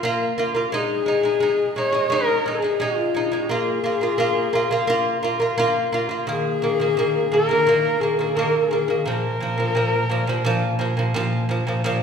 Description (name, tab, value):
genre	mongolian traditional, Mongolian folk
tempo	86 BPM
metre	4/4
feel	straight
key	unclear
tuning	A4 = 436 Hz
part	lute	arpeggios	0.0-12.0 s	Bb2 to F4	-21 LUFS	right 2 dB	none
part	dark horsehead fiddle	melody	0.7-11.1 s	F4 to Db5	-22 LUFS	left 4 dB	none
room	wet recital hall reverb, RT60 1.4 s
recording	recorded in a church or concert hall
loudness	-19 LUFS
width	side -6 dB against mid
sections	0.0-11.8 A section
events	none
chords	0.0 Bb5; 0.7 Ab5; 3.5 Bb5; 6.3 Eb5; 9.1 Bb5